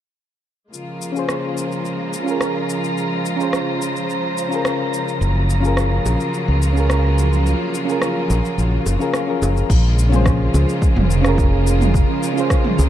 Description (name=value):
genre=sunset chillout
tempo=107 BPM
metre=4/4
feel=straight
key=Bb minor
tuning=A4 = 439 Hz
part: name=rich studio string section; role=sustained chords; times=0.7-12.9 s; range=Db3 to C5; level=-24 LUFS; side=left 1 dB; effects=none
part: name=deep house drum kit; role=drums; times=0.7-12.9 s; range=crash cymbal, rim click, shaker, toms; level=-26 LUFS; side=equal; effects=none
part: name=wind-like tuned noise texture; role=texture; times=1.5-9.7 s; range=Bb5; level=-31 LUFS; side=right 2 dB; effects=built-in reverb
part: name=soft electric-piano-like synth keys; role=accompaniment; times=1.1-12.9 s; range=Db4 to C5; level=-22 LUFS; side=moving between left 6 dB and right 7 dB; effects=chorus, auto-pan, low-pass filter, tape echo
part: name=modern bright fingered electric bass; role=bass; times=5.2-12.9 s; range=F1 to Db2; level=-16 LUFS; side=equal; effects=none
part: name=bongos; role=percussion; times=6.1-12.9 s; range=none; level=-31 LUFS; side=right 2 dB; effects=none
part: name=electronic kick drum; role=drums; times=9.7-12.6 s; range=none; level=-17 LUFS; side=equal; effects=none
room=light reverb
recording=dark, warm production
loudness=-16 LUFS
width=side -11 dB against mid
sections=0.7-9.7 A section; 9.7-12.9 B section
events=filter sweep on synth keys 0.7-9.7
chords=0.7 Bbm7; 5.2 Gbmaj7; 9.7 Bbm7